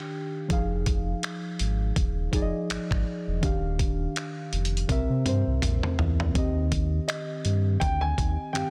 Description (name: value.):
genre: contemporary R&B.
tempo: 82 BPM.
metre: 4/4.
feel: swing 58% on 16ths.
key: unclear.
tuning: A4 = 440 Hz.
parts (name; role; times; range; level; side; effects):
muted felt-like synth keys; accompaniment; 0.0-8.7 s; C3 to G5; -34 LUFS; equal; chorus.
sub bass with octave; bass; 0.5-8.6 s; Eb1 to C3; -29 LUFS; equal; none.
dusty soul sampler-style drum kit; drums; 0.5-8.7 s; finger snaps, hi-hat, kick drum, toms; -31 LUFS; equal; soft clipping on snare.
dark baby grand piano; melody; 7.1-8.7 s; Eb5 to Ab5; -34 LUFS; equal; none.
room: little or no reverb.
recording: dense, heavily limited modern master.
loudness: -27 LUFS.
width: mono.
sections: 0.0-6.4 A section; 6.4-8.7 B section.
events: drum fill 4.9-6.4.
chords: 0.0 Ebmaj9; 0.5 Fm7; 3.4 Ebmaj9; 4.9 C7; 6.4 Eb6.